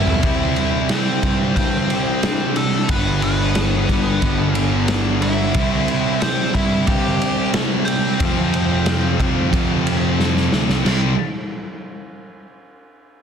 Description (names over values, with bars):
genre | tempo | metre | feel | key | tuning
quiet-loud alternative rock | 90 BPM | 4/4 | straight | C major | A4 = 439 Hz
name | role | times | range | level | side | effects
nasal lead guitar with a parked wah | melody | 0.0-10.1 s | A3 to G5 | -24 LUFS | equal | overdrive, tape echo
heavy high-gain guitar | riff | 0.0-11.1 s | F2 to C4 | -24 LUFS | left 14 dB | distortion
thick fuzz guitar | riff | 0.0-11.1 s | F2 to C4 | -22 LUFS | right 11 dB | distortion
fuzz picked electric bass | bass | 0.0-11.2 s | G1 to G2 | -22 LUFS | equal | overdrive
raw garage drum kit | drums | 0.1-11.0 s | crash cymbal, kick drum, ride cymbal, snare drum, toms | -22 LUFS | equal | none
electric guitar through a small old amp | arpeggios | 0.2-5.6 s | G2 to D4 | -28 LUFS | left 10 dB | tremolo
room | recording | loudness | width
light reverb, small room ambience | dense, heavily limited modern master | -16 LUFS | side -7 dB against mid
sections
0.2-10.9 A section; 10.9-13.2 B section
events
drum fill 0.0, 10.2-10.9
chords
0.2 Cadd9; 2.9 G; 5.6 C; 8.2 F5; 10.9 C5